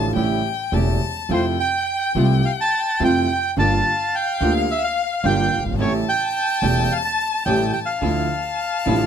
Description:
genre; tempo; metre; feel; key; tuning
tango; 107 BPM; 4/4; rubato; unclear; A4 = 440 Hz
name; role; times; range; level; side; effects
warm violin; second line; 0.0-9.1 s; F5 to A5; -26 LUFS; left 7 dB; none
warm concert grand piano; accompaniment; 0.0-9.1 s; E1 to F4; -23 LUFS; right 3 dB; none
dark chamber string section; stabs; 0.0-9.1 s; F3 to G4; -30 LUFS; equal; none
upright bass; bass; 0.0-9.1 s; E1 to F2; -22 LUFS; equal; none
bandoneon; melody; 1.3-9.1 s; C5 to A5; -21 LUFS; right 2 dB; none
room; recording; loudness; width
moderate studio reverb, RT60 0.8 s; none; -18 LUFS; side -8 dB against mid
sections
0.0-9.1 A section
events
none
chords
0.2 A7; 1.3 Fmaj7; 3.6 Gm7; 5.8 A7; 8.0 Dmadd9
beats
0.16 0.73 | 1.30 1.87 2.44 3.01 | 3.57 4.13 4.68 5.24 | 5.79 6.35 6.90 7.46 | 8.02 8.58

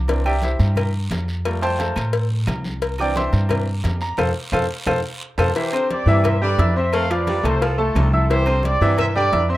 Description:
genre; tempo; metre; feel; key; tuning
latin, salsa; 175 BPM; 4/4; straight; C major; A4 = 440 Hz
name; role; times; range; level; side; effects
upright bass; bass; 0.0-9.6 s; C2 to A2; -20 LUFS; equal; none
bright grand piano; accompaniment; 0.1-9.6 s; E3 to F6; -22 LUFS; equal; plate reverb
agogo bells and timbales; percussion; 0.1-9.5 s; none; -34 LUFS; right 3 dB; none
congas; percussion; 0.1-9.6 s; none; -31 LUFS; equal; none
cowbell; percussion; 0.1-9.5 s; none; -27 LUFS; left 5 dB; none
guiro; percussion; 0.1-5.5 s; none; -37 LUFS; right 1 dB; none
claves; percussion; 0.3-9.2 s; none; -35 LUFS; right 2 dB; none
mellow trumpet section; melody; 5.4-9.6 s; F4 to F5; -23 LUFS; right 1 dB; slapback echo
raspy baritone saxophone; second line; 5.7-9.4 s; C3 to A3; -30 LUFS; left 1 dB; plate reverb
room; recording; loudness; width
moderate small room reverb, RT60 0.5 s; rough home demo mix; -17 LUFS; side -16 dB against mid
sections
0.0-5.6 A section; 5.6-9.6 B section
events
grand piano solo 0.0-5.6; drum fill 4.2-5.6; band accent 4.2-5.6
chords
0.1 Cadd9; 1.4 Fadd9; 2.8 Cadd9; 4.2 F; 5.6 Cadd9; 6.9 F; 8.3 Cadd9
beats
| 0.08 0.42 0.76 1.11 | 1.45 1.79 2.13 2.48 | 2.82 3.16 3.50 3.85 | 4.19 4.53 4.87 5.22 | 5.56 5.90 6.24 6.58 | 6.93 7.27 7.61 7.95 | 8.30 8.64 8.98 9.32

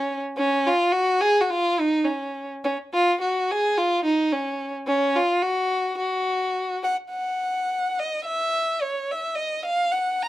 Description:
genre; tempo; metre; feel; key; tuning
mexican folk; 107 BPM; 2/4; swing 53% on 8ths, rubato; unclear; A4 = 440 Hz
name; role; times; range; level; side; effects
rich violin; solo; 0.0-10.3 s; C#4 to Bb5; -21 LUFS; equal; none
room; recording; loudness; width
moderate studio reverb, RT60 0.6 s; dark, warm production; -21 LUFS; side -15 dB against mid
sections
0.0-7.1 A section; 7.1-10.3 B section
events
none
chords
none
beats
| 0.36 0.91 | 1.47 2.04 | 2.61 3.18 | 3.74 4.30 | 4.86 5.41 | 5.96 6.53 | 7.10 7.67 | 8.24 8.80 | 9.35 9.91

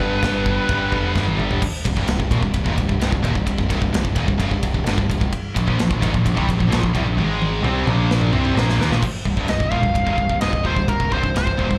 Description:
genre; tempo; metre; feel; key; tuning
heavy metal; 129 BPM; 4/4; straight; C minor; A4 = 440 Hz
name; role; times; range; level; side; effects
bluesy overdriven lead guitar; melody; 0.0-1.1, 9.5-11.8 s; Bb4 to F5; -25 LUFS; equal; distortion, slapback echo
heavy high-gain guitar; riff; 0.0-9.0 s; C2 to G4; -31 LUFS; equal; distortion
high-gain distorted guitar; riff; 0.0-11.8 s; C2 to C4; -27 LUFS; equal; distortion, slapback echo
scooped high-gain guitar; riff; 0.0-1.6, 5.5-11.8 s; C2 to C4; -29 LUFS; equal; distortion
growling picked electric bass; bass; 0.0-11.8 s; C1 to Eb2; -25 LUFS; equal; overdrive
big rock drum kit; drums; 0.2-11.8 s; china cymbal, crash cymbal, kick drum, ride cymbal, snare drum, toms; -25 LUFS; equal; none
room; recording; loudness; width
small room ambience; live gig heard through the venue's PA, club reverb; -20 LUFS; mono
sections
0.0-1.6 A section; 1.6-9.0 B section; 9.0-11.8 C section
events
drum fill 1.1-1.6, 7.2-9.0; lead electric guitar solo 9.0-11.8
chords
0.0 G; 1.6 Cm; 5.6 Bb5; 7.2 Ab5; 7.6 Bb5; 9.0 Cm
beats
0.22 0.69 1.15 | 1.61 2.08 2.54 3.01 | 3.47 3.94 4.40 4.86 | 5.33 5.79 6.25 6.71 | 7.18 7.64 8.10 8.57 | 9.03 9.49 9.96 10.42 | 10.89 11.35

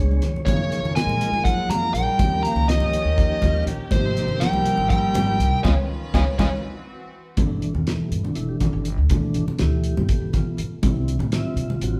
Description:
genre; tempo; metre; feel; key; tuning
electric jazz fusion; 243 BPM (eighths); 7/8; straight; Eb major, G major from 7.4 s; A4 = 436 Hz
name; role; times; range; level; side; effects
mellow tonewheel organ; accompaniment; 0.0-12.0 s; B2 to G5; -30 LUFS; equal; slow rotary speaker
upright bass; bass; 0.0-12.0 s; E1 to C3; -27 LUFS; equal; none
congas; percussion; 0.1-11.8 s; none; -31 LUFS; equal; none
damped 70s drum kit; drums; 0.2-11.9 s; hi-hat, kick drum, snare drum; -26 LUFS; equal; none
bluesy overdriven lead guitar; melody; 0.5-6.5 s; C5 to Bb5; -26 LUFS; equal; distortion
warm bass clarinet; second line; 0.5-6.5 s; C3 to Bb3; -31 LUFS; equal; none
clear studio string section; sustained chords; 0.5-7.4 s; Eb3 to Cb5; -36 LUFS; equal; none
room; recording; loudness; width
wet large studio reverb, RT60 1.2 s; band playing live in one room; -22 LUFS; mono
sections
0.0-7.4 A section; 7.4-12.0 B section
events
tonewheel organ fill 0.0-0.5, 3.2-3.9, 6.6-7.4; drum fill 0.0-0.5, 5.9-7.4; band accent 5.6-7.4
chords
0.5 Gbmaj9; 2.2 Eb7; 3.9 Abmaj13; 5.6 Db9; 6.6 Cmaj7#11/E; 7.4 G69; 10.8 C6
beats
0.22 | 0.47 0.71 0.96 1.21 1.45 1.70 1.95 | 2.19 2.44 2.69 2.93 3.18 3.43 3.67 | 3.92 4.17 4.41 4.66 4.91 5.15 5.40 | 5.65 5.89 6.14 6.39 6.63 6.88 7.13 | 7.38 7.62 7.87 8.12 8.37 8.61 8.86 | 9.11 9.35 9.60 9.85 10.09 10.34 10.59 | 10.83 11.08 11.32 11.57 11.82

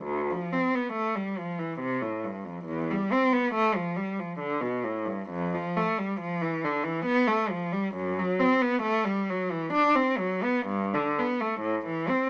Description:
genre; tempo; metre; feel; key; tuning
classical, baroque-style suite movement for unaccompanied cello; 68 BPM; 3/4; uneven beats, rubato; unclear; A4 = 440 Hz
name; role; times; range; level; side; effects
rich cello; solo; 0.0-12.3 s; D2 to D4; -25 LUFS; equal; none
room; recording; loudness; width
light reverb; small speaker sound; -25 LUFS; side -27 dB against mid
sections
0.0-12.3 A section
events
none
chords
none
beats
| 0.04 0.94 1.80 | 2.67 3.54 4.40 | 5.30 6.20 7.07 | 7.96 8.85 9.74 | 10.67 11.60

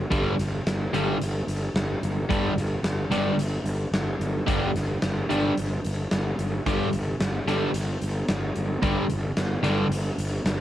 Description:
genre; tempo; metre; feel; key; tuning
hard rock; 110 BPM; 4/4; straight; unclear; A4 = 440 Hz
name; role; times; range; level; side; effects
fuzz fingered electric bass; bass; 0.0-10.6 s; G1; -27 LUFS; equal; overdrive
cranked stack guitar; riff; 0.1-9.9 s; G2 to G3; -25 LUFS; equal; overdrive
huge arena drum kit; drums; 0.1-10.6 s; hi-hat, kick drum, snare drum; -29 LUFS; equal; cassette tape
room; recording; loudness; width
small room reverb; home recording on cassette; -23 LUFS; side -12 dB against mid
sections
0.0-10.6 A section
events
none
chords
0.0 G5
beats
| 0.12 0.66 1.21 1.76 | 2.30 2.85 3.39 3.94 | 4.48 5.03 5.57 6.12 | 6.66 7.20 7.75 8.29 | 8.83 9.37 9.91 10.46

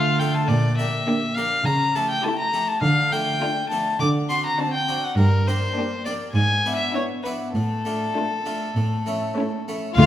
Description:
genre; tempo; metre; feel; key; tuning
classical, baroque-style concerto movement with solo episodes; 102 BPM; 4/4; straight; D minor; A4 = 440 Hz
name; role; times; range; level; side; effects
dark violin; melody; 0.0-10.1 s; A4 to D6; -24 LUFS; left 2 dB; none
rich chamber violin section; melody; 0.0-10.1 s; E4 to F5; -30 LUFS; left 6 dB; none
dark chamber violin section; second line; 0.0-10.1 s; C#4 to F4; -31 LUFS; left 2 dB; none
dark chamber viola section; accompaniment; 0.0-10.0 s; A3 to C4; -27 LUFS; equal; none
harpsichord; accompaniment; 0.0-10.1 s; G2 to A4; -29 LUFS; equal; none
dark chamber cello section; bass; 0.0-10.1 s; G2 to D3; -23 LUFS; right 1 dB; none
rich chamber double bass section; bass; 10.0 s; D2; -15 LUFS; right 2 dB; none
room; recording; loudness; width
wet recital hall reverb, RT60 1.7 s; none; -20 LUFS; side -12 dB against mid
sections
0.0-10.0 A section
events
none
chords
0.5 Gm/Bb; 1.7 A7/C#; 2.8 Dm; 4.0 D7; 5.2 Gm; 6.3 E7/G#; 7.5 Dm/A; 8.8 A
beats
| 0.49 1.08 1.66 2.24 | 2.83 3.41 4.00 4.58 | 5.17 5.76 6.35 6.94 | 7.54 8.15 8.76 9.37 | 9.97

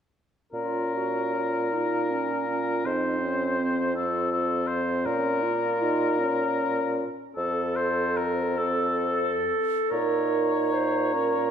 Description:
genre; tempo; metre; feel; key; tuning
classical, slow romantic movement for wind quintet; 43-56 BPM (dotted quarters); 6/8; rubato; Bb minor; A4 = 439 Hz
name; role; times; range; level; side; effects
warm oboe; second line; 0.5-11.5 s; A4 to Db5; -29 LUFS; left 4 dB; none
mellow French horn; accompaniment; 0.5-11.5 s; C4 to F4; -32 LUFS; left 1 dB; none
warm clarinet; accompaniment; 0.5-11.5 s; C4 to C5; -30 LUFS; right 4 dB; none
warm bassoon; bass; 0.5-11.5 s; F2 to Bb2; -28 LUFS; right 2 dB; none
mellow hollow silver concert flute; melody; 9.9-11.5 s; Bb5; -32 LUFS; left 11 dB; none
room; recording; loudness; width
moderate concert hall reverb, RT60 1.8 s; none; -24 LUFS; side -8 dB against mid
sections
0.5-9.9 A section; 9.9-11.5 B section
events
none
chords
0.5 Bbm; 2.9 F7; 5.1 Bbm; 7.4 F; 9.9 Bbm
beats
| 0.53 1.73 | 2.86 3.95 | 5.06 6.21 | 7.36 8.59 | 9.92 11.13

